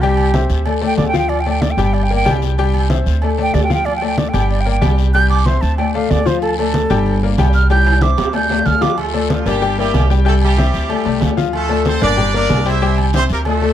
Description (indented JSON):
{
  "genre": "latin, salsa",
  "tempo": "188 BPM",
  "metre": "4/4",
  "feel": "straight",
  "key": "D minor",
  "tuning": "A4 = 440 Hz",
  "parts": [
    { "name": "concert flute", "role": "melody", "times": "0.0-9.0 s", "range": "G4 to G6", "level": "-19 LUFS", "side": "right 4 dB", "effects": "none" },
    { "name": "bright concert grand piano", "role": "accompaniment", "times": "0.0-13.7 s", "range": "F3 to G5", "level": "-19 LUFS", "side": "left 9 dB", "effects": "none" },
    { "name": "upright bass", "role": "bass", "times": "0.0-13.7 s", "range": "G1 to D2", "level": "-17 LUFS", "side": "right 1 dB", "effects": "none" },
    { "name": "agogo bells and timbales", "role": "percussion", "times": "0.0-13.6 s", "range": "none", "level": "-25 LUFS", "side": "right 8 dB", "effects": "none" },
    { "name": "congas", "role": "percussion", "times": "0.0-13.7 s", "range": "none", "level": "-22 LUFS", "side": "left 1 dB", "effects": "none" },
    { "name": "guiro", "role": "percussion", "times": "0.0-13.7 s", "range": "none", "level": "-33 LUFS", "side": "left 16 dB", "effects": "none" },
    { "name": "brilliant horn section", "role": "melody", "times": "9.0-13.7 s", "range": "F3 to E5", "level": "-20 LUFS", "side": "right 2 dB", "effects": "none" }
  ],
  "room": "little or no reverb",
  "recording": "dry, close 1970s-style studio recording",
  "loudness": "-13 LUFS",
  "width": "side -11 dB against mid",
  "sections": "0.0-9.0 A section; 9.0-13.7 B section",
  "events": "flute solo 0.0-9.0; drum fill 7.7-9.0",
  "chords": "0.0 C; 0.7 Dm; 1.9 Gm; 2.6 C; 3.2 Dm; 4.5 Gm; 5.1 C; 5.8 Dm; 7.1 Gm; 7.7 C; 8.3 Dm; 9.6 Gm; 10.3 C; 10.9 Dm; 12.2 Gm; 12.8 C",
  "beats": "| 0.02 0.34 0.66 0.98 | 1.30 1.62 1.94 2.26 | 2.58 2.90 3.22 3.54 | 3.86 4.18 4.50 4.82 | 5.14 5.46 5.78 6.10 | 6.42 6.74 7.06 7.38 | 7.70 8.02 8.34 8.66 | 8.98 9.30 9.62 9.94 | 10.26 10.58 10.90 11.22 | 11.54 11.86 12.18 12.50 | 12.82 13.14 13.46"
}